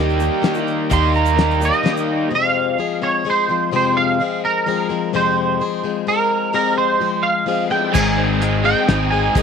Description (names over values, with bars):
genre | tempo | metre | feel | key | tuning
folk rock and heartland rock | 128 BPM | 3/4 | straight | F minor | A4 = 437 Hz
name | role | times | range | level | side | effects
pedal steel guitar | second line | 0.0-2.3 s | G4 to C6 | -22 LUFS | right 13 dB | none
picked plugged-in swing-style acoustic guitar | accompaniment | 0.0-9.4 s | F2 to Ab4 | -21 LUFS | left 11 dB | none
bright tonewheel organ | sustained chords | 0.0-2.3, 7.6-9.4 s | G3 to D5 | -28 LUFS | right 1 dB | slow rotary speaker
overdriven electric guitar | riff | 0.0-2.3, 7.9-9.4 s | Ab2 to Ab4 | -22 LUFS | right 1 dB | none
hollow-body short-scale fingered electric bass | bass | 0.0-1.7, 7.9-9.4 s | Ab1 to Eb2 | -20 LUFS | right 1 dB | none
egg shaker | percussion | 0.1-2.1, 7.9-9.4 s | none | -40 LUFS | right 15 dB | none
cloth-damped thuddy drum kit | drums | 0.4-2.0, 7.9-9.4 s | crash cymbal, hi-hat, kick drum, snare drum | -21 LUFS | left 3 dB | none
twangy electric guitar | melody | 1.7-9.4 s | Bb4 to Ab5 | -18 LUFS | right 4 dB | ensemble chorus
room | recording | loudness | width
light reverb, studio reverb | 1960s-style stereo with parts hard left and right | -15 LUFS | side -6 dB against mid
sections
0.0-2.3 A section; 2.3-9.4 B section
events
pedal steel guitar solo 0.0-2.3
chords
0.0 Eb; 2.3 Fm; 8.0 Ab